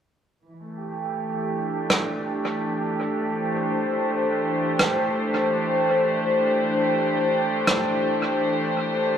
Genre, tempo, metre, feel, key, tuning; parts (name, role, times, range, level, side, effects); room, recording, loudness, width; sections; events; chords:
ambient dub; 83 BPM; 4/4; swing 58% on 16ths; A4 = 440 Hz
rich studio string section; sustained chords; 0.5-9.2 s; E3 to C5; -22 LUFS; equal; low-pass filter
rim click; drums; 1.9-7.8 s; -24 LUFS; right 1 dB; dub echo
moderate echo chamber reverb, RT60 2.1 s; echo-heavy mix; -21 LUFS; side -8 dB against mid
0.5-9.2 A section
filter sweep on string section 0.5-9.2
0.5 D9sus4